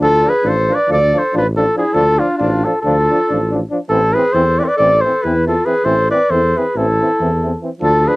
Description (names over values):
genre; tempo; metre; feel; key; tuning
balkan folk; 276 BPM (eighths); 9/8; straight; D dorian sharp4; A4 = 439 Hz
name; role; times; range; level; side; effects
warm flugelhorn; melody; 0.0-8.2 s; F4 to D5; -14 LUFS; equal; none
warm clarinet; second line; 0.0-8.2 s; D4 to B4; -22 LUFS; left 2 dB; cassette tape
warm euphonium; accompaniment; 0.0-8.1 s; E3 to F3; -24 LUFS; right 2 dB; cassette tape
warm trombone; accompaniment; 0.0-8.1 s; C4 to D4; -23 LUFS; left 2 dB; cassette tape
mellow tuba; bass; 0.0-8.1 s; A1 to E2; -19 LUFS; equal; none
room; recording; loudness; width
wet booth ambience, RT60 0.2 s; home recording on cassette; -12 LUFS; side -21 dB against mid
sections
0.0-8.2 A section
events
none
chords
0.0 Dm; 3.9 Am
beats
0.20 0.42 0.64 0.86 1.07 1.29 1.51 1.72 | 1.94 2.16 2.37 2.59 2.81 3.02 3.24 3.46 3.68 | 3.89 4.11 4.33 4.54 4.76 4.98 5.20 5.42 5.63 | 5.85 6.07 6.29 6.50 6.72 6.94 7.16 7.38 7.59 | 7.81 8.03